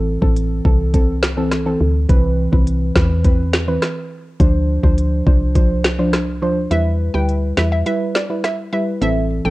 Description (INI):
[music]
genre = dancehall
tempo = 104 BPM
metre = 4/4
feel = straight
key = unclear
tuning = A4 = 440 Hz
[part]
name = soft round pluck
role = accompaniment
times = 0.0-9.5 s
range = E3 to C5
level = -20 LUFS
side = right 1 dB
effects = chorus, sidechain pumping, cassette tape
[part]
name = woody FM bass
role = bass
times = 0.0-9.5 s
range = A1 to E2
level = -19 LUFS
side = equal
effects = none
[part]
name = island pop drum kit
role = drums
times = 0.2-9.2 s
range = hi-hat, kick drum, rim click, snare drum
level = -16 LUFS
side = equal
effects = vintage 12-bit sampler grit
[part]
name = hollow square pluck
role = melody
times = 6.7-9.5 s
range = D5 to G5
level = -23 LUFS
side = equal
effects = chorus, cassette tape
[sound]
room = little or no reverb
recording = home recording on cassette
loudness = -14 LUFS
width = side -19 dB against mid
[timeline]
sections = 0.0-6.7 A section; 6.7-9.5 B section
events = kick muted 6.7-9.5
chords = 0.0 Am; 2.1 Cmaj7; 4.4 Dm7; 6.7 Em